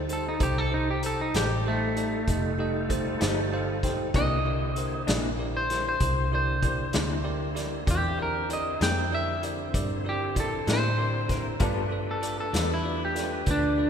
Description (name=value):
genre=slow blues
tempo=64 BPM (dotted quarters)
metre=12/8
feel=straight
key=C mixolydian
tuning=A4 = 440 Hz
part: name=bell-like tine electric piano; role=accompaniment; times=0.0-13.9 s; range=Eb4 to G5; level=-33 LUFS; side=right 2 dB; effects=medium stereo tremolo
part: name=bright tonewheel organ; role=sustained chords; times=0.0-13.9 s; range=D3 to C5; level=-36 LUFS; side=equal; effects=slow rotary speaker, chorus vibrato
part: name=vintage muted fingered electric bass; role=bass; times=0.0-13.9 s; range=F1 to A2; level=-30 LUFS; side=equal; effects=none
part: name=electric guitar at the edge of break-up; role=melody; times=0.1-13.9 s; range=A3 to G5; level=-29 LUFS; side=equal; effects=none
part: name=vintage drum kit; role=drums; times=0.1-13.6 s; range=hi-hat, kick drum, snare drum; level=-31 LUFS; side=equal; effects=none
part: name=electric guitar through a small old amp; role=accompaniment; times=1.3-12.7 s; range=C3 to A4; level=-36 LUFS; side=left 4 dB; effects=tremolo
room=wet church reverb, RT60 2.9 s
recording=recorded in a church or concert hall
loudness=-24 LUFS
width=side -7 dB against mid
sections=0.0-13.9 A section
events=clean electric guitar solo 0.0-13.9; tine electric piano fill 3.2-4.1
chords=0.0 F9; 4.1 C9; 11.6 G9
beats=| 0.41 1.34 2.28 3.21 | 4.15 5.08 6.01 6.95 | 7.88 8.81 9.74 10.68 | 11.61 12.54 13.47